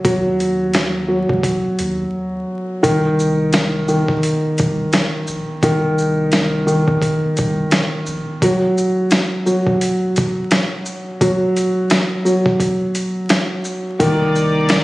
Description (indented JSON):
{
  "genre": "hip hop, boom-bap hip-hop",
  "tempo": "86 BPM",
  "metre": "4/4",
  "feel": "swing 56% on 16ths",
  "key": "unclear",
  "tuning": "A4 = 440 Hz",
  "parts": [
    { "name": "dark concert grand piano", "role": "accompaniment", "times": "0.0-14.8 s", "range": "Eb3 to Gb3", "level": "-17 LUFS", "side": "equal", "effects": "cassette tape, high-pass filter, low-pass filter" },
    { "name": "boom bap sampler-style drum kit", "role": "drums", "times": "0.0-14.8 s", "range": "hi-hat, kick drum, shaker, snare drum", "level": "-19 LUFS", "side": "equal", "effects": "overdrive" },
    { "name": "soft dub sub bass", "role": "bass", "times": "0.1-8.2, 14.0-14.8 s", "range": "Bb1 to Eb2", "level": "-26 LUFS", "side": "equal", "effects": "none" },
    { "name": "clear studio string section", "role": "sustained chords", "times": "14.0-14.8 s", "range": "Bb3 to D5", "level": "-21 LUFS", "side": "left 1 dB", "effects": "high-pass filter, low-pass filter" }
  ],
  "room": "light reverb",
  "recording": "recorded on a phone in the room, studio reverb, vinyl crackle, compression",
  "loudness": "-15 LUFS",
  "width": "side -19 dB against mid",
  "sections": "0.0-2.8 A section; 2.8-14.8 A section",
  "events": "break 2.1-2.8",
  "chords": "0.0 Ebm; 2.8 Cm; 8.4 N.C.; 14.0 Cm9"
}